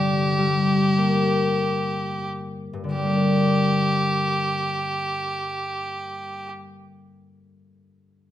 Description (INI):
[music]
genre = celtic folk, Celtic slow air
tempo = 28-36 BPM (dotted quarters)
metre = 6/8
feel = rubato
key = G minor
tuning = A4 = 438 Hz
[part]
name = clear fiddle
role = melody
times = 0.0-6.5 s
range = G4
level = -25 LUFS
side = right 2 dB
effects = none
[part]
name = concert harp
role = accompaniment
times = 0.0-6.7 s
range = G2 to D4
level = -23 LUFS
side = left 2 dB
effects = none
[sound]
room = moderate recital hall reverb, RT60 1.3 s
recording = minimal, uncompressed stereo recording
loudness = -20 LUFS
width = side -12 dB against mid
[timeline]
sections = 0.0-3.0 A section; 3.0-7.2 B section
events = slowing down 0.0-3.0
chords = 0.0 Gm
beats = 0.98 | 2.96 5.07